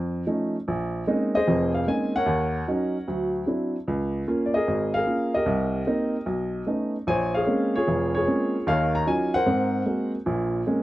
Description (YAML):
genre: solo jazz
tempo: 150 BPM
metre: 4/4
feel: swing 67% on 8ths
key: unclear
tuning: A4 = 439 Hz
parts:
  - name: warm upright piano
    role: solo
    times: 0.0-10.8 s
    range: F1 to Bb5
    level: -22 LUFS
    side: equal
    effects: none
room: light reverb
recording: dry, close 1970s-style studio recording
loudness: -22 LUFS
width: side -16 dB against mid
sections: 0.0-10.3 A section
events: none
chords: 0.0 F7b13; 0.7 Bbm11; 2.3 Ebm7; 3.1 D9; 3.9 Db6; 5.5 Cm7; 6.3 Cb9; 7.1 Bbm9; 8.7 Ebm9; 9.5 Ab9; 10.3 Bbm9